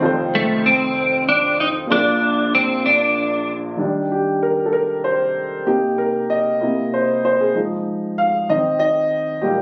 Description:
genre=slow gospel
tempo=64 BPM (dotted quarters)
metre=6/8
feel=straight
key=Eb major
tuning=A4 = 439 Hz
part: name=warm upright piano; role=accompaniment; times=0.0-9.6 s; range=F1 to F5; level=-21 LUFS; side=equal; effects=none
part: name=clean electric guitar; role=melody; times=0.3-3.5 s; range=A3 to Eb4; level=-18 LUFS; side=equal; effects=ensemble chorus
room=light reverb, studio reverb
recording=recorded on a phone in the room, club reverb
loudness=-19 LUFS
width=mono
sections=0.0-3.8 A section; 3.8-9.6 B section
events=upright piano solo 3.8-9.6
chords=0.0 F7; 1.9 Bb; 3.8 Ebmaj7; 5.7 Cm7; 6.6 C7alt; 7.6 Fm7; 8.5 Cm/Eb

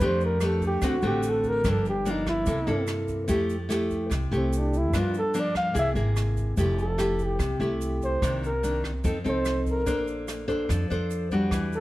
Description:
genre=bossa nova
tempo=146 BPM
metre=4/4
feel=straight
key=F major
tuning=A4 = 442 Hz
part: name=breathy flugelhorn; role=melody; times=0.0-11.8 s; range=C4 to F5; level=-28 LUFS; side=equal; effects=none
part: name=nylon-string guitar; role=accompaniment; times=0.0-11.8 s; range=G2 to C5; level=-27 LUFS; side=equal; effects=none
part: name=upright bass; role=bass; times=0.0-11.8 s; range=F1 to G2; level=-29 LUFS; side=equal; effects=none
part: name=jazz brush drum kit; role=drums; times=0.0-11.8 s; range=hi-hat, kick drum, rim click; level=-33 LUFS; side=equal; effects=none
part: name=egg shaker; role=percussion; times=0.0-11.8 s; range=none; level=-46 LUFS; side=right 9 dB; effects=none
room=light reverb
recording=none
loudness=-24 LUFS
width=side -17 dB against mid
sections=0.0-6.6 A section; 6.6-11.8 A section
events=flugelhorn solo 0.0-6.6, 6.6-11.8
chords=0.0 F69; 0.8 D7; 1.6 Gm7; 2.5 C6; 3.3 Fmaj9; 4.9 Gm7; 5.8 Caug7; 6.6 Fmaj9; 8.2 Cm9; 9.0 F7; 9.9 Bbmaj9

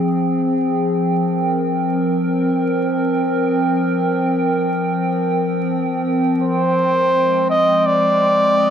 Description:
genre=ambient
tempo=free time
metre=none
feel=none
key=F dorian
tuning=A4 = 440 Hz
part: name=warbly tape-like pad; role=sustained chords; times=0.0-8.7 s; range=F3 to G5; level=-17 LUFS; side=equal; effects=chorus, built-in reverb
part: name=trumpet with cup mute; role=melody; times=6.4-8.7 s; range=C5 to Eb5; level=-14 LUFS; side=right 1 dB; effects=dub echo
room=light reverb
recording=echo-heavy mix, vinyl crackle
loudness=-15 LUFS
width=side -8 dB against mid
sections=0.0-8.7 A section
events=none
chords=0.0 Fmadd9

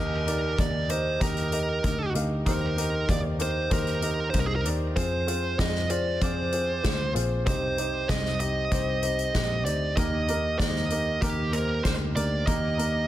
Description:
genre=piano-driven pop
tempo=96 BPM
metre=4/4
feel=straight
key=Eb major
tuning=A4 = 440 Hz
part: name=high-gain lead guitar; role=melody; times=0.0-13.1 s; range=G4 to Eb5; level=-29 LUFS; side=right 2 dB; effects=distortion
part: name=warm upright piano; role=accompaniment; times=0.0-13.1 s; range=C3 to F5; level=-31 LUFS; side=left 1 dB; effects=none
part: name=vintage muted picked electric bass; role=bass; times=0.0-13.1 s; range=Bb1 to F2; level=-29 LUFS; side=equal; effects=none
part: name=soft-mallet drum kit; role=drums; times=0.3-12.9 s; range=hi-hat, kick drum, snare drum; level=-30 LUFS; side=equal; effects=none
room=light reverb, small room ambience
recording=dense, heavily limited modern master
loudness=-24 LUFS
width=side -13 dB against mid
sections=0.0-13.1 A section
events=none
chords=0.0 Eb; 5.0 Fm; 7.5 Cm; 10.0 Eb

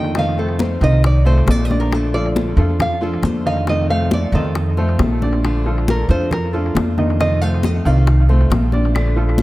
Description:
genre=latin, Cuban son and guajira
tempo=136 BPM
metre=4/4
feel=straight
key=unclear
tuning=A4 = 436 Hz
part: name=nylon-string guitar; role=melody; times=0.0-8.3 s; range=A4 to G5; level=-24 LUFS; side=right 1 dB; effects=dub echo
part: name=fingerpicked steel-string acoustic guitar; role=accompaniment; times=0.0-9.4 s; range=C3 to F4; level=-26 LUFS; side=left 3 dB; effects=dub echo
part: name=dark baby grand piano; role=arpeggios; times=0.0-9.4 s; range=Eb3 to F5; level=-22 LUFS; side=right 2 dB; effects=dub echo
part: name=upright bass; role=bass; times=0.0-9.4 s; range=Bb1 to F2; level=-16 LUFS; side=equal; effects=none
part: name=bongos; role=percussion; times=0.1-9.4 s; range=none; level=-28 LUFS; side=left 4 dB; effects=dub echo
part: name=congas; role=percussion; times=0.2-9.4 s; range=none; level=-24 LUFS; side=left 2 dB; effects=dub echo
part: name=claves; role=percussion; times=8.9-9.2 s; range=none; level=-31 LUFS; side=right 2 dB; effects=dub echo
room=light reverb, small room ambience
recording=echo-heavy mix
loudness=-14 LUFS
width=side -17 dB against mid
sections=0.0-9.4 A section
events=nylon-string guitar solo 0.0-9.4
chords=0.2 F7; 1.9 Bbmaj7; 3.7 F7; 5.4 Bbmaj7; 7.2 F7

